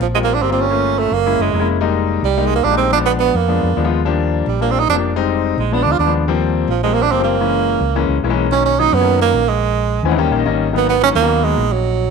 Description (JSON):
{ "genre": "Afro-Cuban jazz", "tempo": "215 BPM", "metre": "4/4", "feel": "straight", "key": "Eb major, B major from 8.5 s", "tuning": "A4 = 440 Hz", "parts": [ { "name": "breathy tenor saxophone", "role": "melody", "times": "0.0-12.1 s", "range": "F3 to F4", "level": "-16 LUFS", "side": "right 11 dB", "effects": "none" }, { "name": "hollow-body short-scale fingered electric bass", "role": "bass", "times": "0.0-12.1 s", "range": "F1 to F#2", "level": "-20 LUFS", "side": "equal", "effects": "none" }, { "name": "clear concert grand piano", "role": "accompaniment", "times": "0.1-11.6 s", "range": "D#3 to G#5", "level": "-19 LUFS", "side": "left 10 dB", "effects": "none" } ], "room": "moderate spring reverb, RT60 1.3 s, studio ambience", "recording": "1960s-style stereo with parts hard left and right", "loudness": "-14 LUFS", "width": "side -5 dB against mid", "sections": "0.0-8.5 A section; 8.5-12.1 B section", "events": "grand piano fill 9.9-10.7", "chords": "0.0 Eb69 (rootless); 0.7 Gm7b5; 1.3 Gb9; 1.8 Fm11; 2.9 Bb7b9; 4.0 Ebmaj7; 5.2 Fm9; 5.7 Bb7b9; 6.3 Eb69; 7.4 Gb7; 8.5 Bmaj9; 9.6 A#7(b5, no3); 10.2 D#7; 10.7 G#m9" }